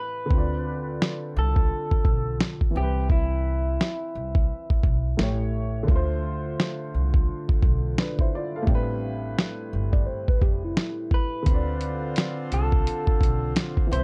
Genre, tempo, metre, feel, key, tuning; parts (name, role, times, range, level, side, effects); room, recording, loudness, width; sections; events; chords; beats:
lo-fi hip hop; 86 BPM; 4/4; swing 61% on 16ths; D dorian; A4 = 441 Hz
electric guitar through a small old amp; melody; 0.0-5.5, 11.1-14.0 s; E4 to C5; -34 LUFS; equal
dark upright piano; accompaniment; 0.0-14.0 s; A2 to F5; -34 LUFS; equal; cassette tape
upright bass; bass; 0.3-14.0 s; F1 to D2; -29 LUFS; equal
lo-fi sampler-style drum kit; drums; 0.3-14.0 s; hi-hat, kick drum, snare drum; -24 LUFS; equal
mellow tine electric piano; second line; 9.9-11.4 s; E4 to D5; -34 LUFS; equal; analog delay
hand-pumped harmonium; sustained chords; 11.5-14.0 s; D3 to F4; -37 LUFS; equal
little or no reverb; cassette tape; -25 LUFS; mono
0.3-14.0 A section
break 0.0-0.3; hi-hats muted 0.3-11.5
0.3 Dm7; 2.7 Cmaj7; 5.2 A7; 5.9 Dm7; 8.7 Am11; 11.5 Dm7
| 0.30 1.00 1.70 2.40 | 3.09 3.79 4.49 5.19 | 5.88 6.58 7.28 7.98 | 8.68 9.37 10.07 10.77 | 11.47 12.16 12.86 13.56